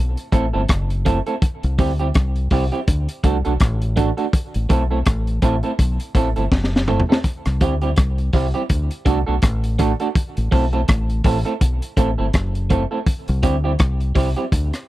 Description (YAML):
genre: roots reggae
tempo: 82 BPM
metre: 4/4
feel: swing 58% on 16ths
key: unclear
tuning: A4 = 442 Hz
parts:
  - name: deep dub fingered electric bass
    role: bass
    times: 0.0-14.7 s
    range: F#1 to D2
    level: -20 LUFS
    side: equal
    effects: none
  - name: crunchy breakbeat drum kit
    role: drums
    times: 0.2-14.9 s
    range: hi-hat, kick drum, rim click, snare drum, toms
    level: -18 LUFS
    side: equal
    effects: none
  - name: electric guitar at the edge of break-up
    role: accompaniment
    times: 0.3-14.4 s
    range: G3 to A4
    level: -23 LUFS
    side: right 3 dB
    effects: tape echo
room: little or no reverb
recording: dry, close 1970s-style studio recording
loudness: -17 LUFS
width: side -16 dB against mid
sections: 0.0-7.2 A section; 7.2-14.9 A section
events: drum fill 6.5-7.2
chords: 0.0 Am; 1.4 C; 2.9 D; 4.3 Am; 7.2 C; 8.7 D; 10.2 Am; 13.1 C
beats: 0.69 | 1.42 2.15 2.88 3.60 | 4.33 5.06 5.79 6.52 | 7.24 7.97 8.70 9.43 | 10.15 10.88 11.61 12.34 | 13.06 13.79 14.52